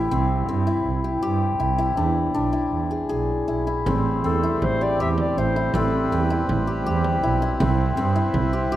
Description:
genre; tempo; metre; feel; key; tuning
contemporary instrumental, chamber music in an uneven meter; 161 BPM; 5/4; straight; unclear; A4 = 440 Hz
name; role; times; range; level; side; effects
hammered dulcimer; arpeggios; 0.0-8.8 s; C4 to G#4; -24 LUFS; left 2 dB; none
rich double bass; bass; 0.0-8.8 s; A1 to G2; -24 LUFS; right 3 dB; none
hand-pumped harmonium; sustained chords; 3.9-8.8 s; G3 to B4; -29 LUFS; equal; none
frame drum; percussion; 3.9-8.5 s; none; -27 LUFS; right 1 dB; none
dark clarinet; melody; 4.3-6.3 s; A4 to E5; -26 LUFS; left 2 dB; none
room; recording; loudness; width
light reverb; close, detailed microphones; -20 LUFS; side -13 dB against mid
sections
0.0-8.8 A section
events
none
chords
0.1 C; 2.0 E7; 3.9 Am7; 7.6 Cmaj7

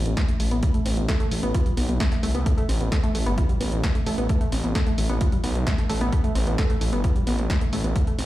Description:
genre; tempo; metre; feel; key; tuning
driving peak-time techno; 131 BPM; 4/4; straight; A minor; A4 = 440 Hz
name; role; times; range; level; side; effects
detuned saw bass; bass; 0.0-8.3 s; G1 to C2; -25 LUFS; equal; sidechain pumping
warbly dusty pluck; riff; 0.1-8.3 s; G3 to A4; -28 LUFS; equal; chorus, tube saturation, sidechain pumping, digital delay
punchy analog drum machine; drums; 0.1-8.3 s; hi-hat, snare drum; -32 LUFS; equal; sidechain pumping on hats
electronic kick drum; drums; 0.2-8.0 s; none; -24 LUFS; equal; none
room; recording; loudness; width
digital ambience; played on a big sound system in a bare room, large studio reverb; -21 LUFS; side -15 dB against mid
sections
0.0-8.3 A section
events
none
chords
none

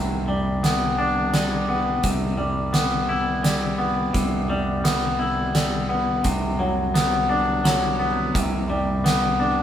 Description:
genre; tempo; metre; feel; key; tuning
post-rock; 86 BPM; 3/4; straight; C lydian; A4 = 440 Hz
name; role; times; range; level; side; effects
twangy electric guitar; arpeggios; 0.0-9.6 s; C3 to E4; -22 LUFS; left 1 dB; spring reverb
growling fingered electric bass; bass; 0.0-9.6 s; C2; -27 LUFS; right 1 dB; overdrive
oversized low-tuned drum kit; drums; 0.6-9.2 s; hi-hat, kick drum, snare drum; -25 LUFS; equal; none
room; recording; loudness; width
wet studio reverb, RT60 0.6 s; band playing live in one room; -20 LUFS; side -10 dB against mid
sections
0.0-9.6 A section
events
none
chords
0.0 G/C; 2.0 Cmaj7; 6.2 D6/C; 8.3 G/C

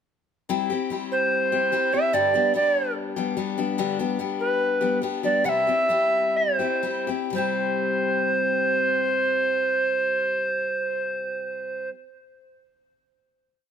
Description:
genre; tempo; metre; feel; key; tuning
country; 117-147 BPM; 4/4; straight; C major; A4 = 440 Hz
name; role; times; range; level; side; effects
picked steel-string acoustic guitar; accompaniment; 0.5-12.0 s; G2 to G4; -28 LUFS; left 8 dB; none
tenor recorder; melody; 1.1-11.9 s; B4 to F#5; -22 LUFS; right 2 dB; none
room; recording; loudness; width
light reverb; none; -21 LUFS; side -7 dB against mid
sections
0.5-7.3 interlude; 7.3-11.4 final chord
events
slowing down 3.8-7.3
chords
0.5 C; 2.1 G; 5.5 C

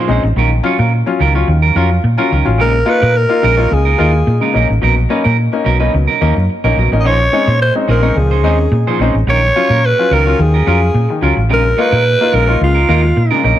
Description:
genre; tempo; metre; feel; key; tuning
disco; 108 BPM; 4/4; straight; unclear; A4 = 440 Hz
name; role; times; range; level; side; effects
breathy alto saxophone; melody; 0.0-13.4 s; F4 to D#5; -15 LUFS; equal; none
clean electric guitar; accompaniment; 0.0-13.6 s; Gb3 to Db5; -18 LUFS; right 9 dB; none
clear grand piano; accompaniment; 0.0-13.6 s; Bb2 to F4; -17 LUFS; left 4 dB; none
hollow-body short-scale fingered electric bass; bass; 0.1-13.6 s; A1 to Bb2; -13 LUFS; equal; none
room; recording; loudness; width
light reverb, studio reverb; none; -10 LUFS; side -12 dB against mid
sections
0.0-13.6 A section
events
none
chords
0.4 Ebm9/Bb; 2.6 Db69/Bb; 4.5 Bmaj9; 7.0 Bbm11; 9.3 Ebm9/Bb; 11.5 Db69/Bb

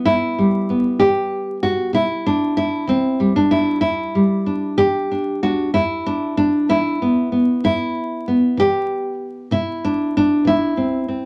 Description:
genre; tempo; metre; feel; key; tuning
folk, solo fingerstyle acoustic guitar; 64 BPM (dotted quarters); 6/8; straight; E minor; A4 = 440 Hz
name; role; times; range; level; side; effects
nylon-string guitar; solo; 0.0-11.3 s; E2 to G4; -19 LUFS; equal; none
room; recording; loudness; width
wet small room reverb, RT60 0.5 s; vinyl crackle; -19 LUFS; mono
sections
0.0-5.7 A section; 5.7-11.3 A section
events
none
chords
0.0 Em; 1.9 C; 3.8 Em7; 5.7 Em; 9.5 C

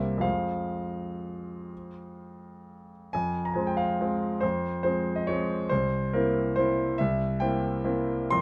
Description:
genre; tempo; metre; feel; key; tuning
classical, piano waltz; 119-150 BPM; 3/4; rubato; F minor; A4 = 444 Hz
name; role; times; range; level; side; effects
clear concert grand piano; solo; 0.0-8.4 s; C2 to C6; -29 LUFS; equal; none
room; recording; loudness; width
light reverb; dark, warm production; -28 LUFS; mono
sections
0.0-3.1 A section; 3.1-8.4 A section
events
none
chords
0.2 Fm; 5.7 C7

